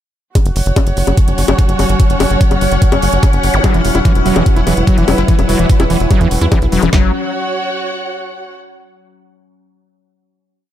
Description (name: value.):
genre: psychedelic trance.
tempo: 146 BPM.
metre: 4/4.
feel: straight.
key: unclear.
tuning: A4 = 445 Hz.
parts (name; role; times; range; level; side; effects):
evolving wavetable pad; sustained chords; 0.7-7.0 s; F#3 to C#4; -20 LUFS; left 2 dB; phaser, built-in reverb, sidechain pumping.
drum and bass drum kit; drums; 0.4-7.0 s; kick drum, snare drum; -12 LUFS; equal; overdrive, studio reverb.
electronic hi-hat and bongos; drums; 0.4-6.9 s; none; -20 LUFS; left 5 dB; overdrive, studio reverb.
dark studio string section; texture; 0.4-8.5 s; E4 to F#5; -20 LUFS; right 2 dB; sidechain pumping.
tight sequencer bass; bass; 0.5-7.1 s; E1 to E2; -16 LUFS; equal; none.
zap; sound effects; 3.5-3.6 s; none; -22 LUFS; equal; none.
screaming distorted acid line; riff; 3.6-7.1 s; E3 to E4; -17 LUFS; moving between left 6 dB and right 6 dB; distortion, chorus, auto-pan, sidechain pumping, digital delay.
room: digital ambience.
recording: none.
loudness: -10 LUFS.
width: side -11 dB against mid.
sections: 0.4-6.9 groove; 6.9-8.6 final chord.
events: none.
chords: 0.4 F#5; 3.6 E5; 6.9 F#5.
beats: | 0.35 0.76 1.18 1.59 | 2.00 2.41 2.82 3.23 | 3.64 4.05 4.46 4.87 | 5.28 5.70 6.11 6.52 | 6.93 7.34 7.75 8.16.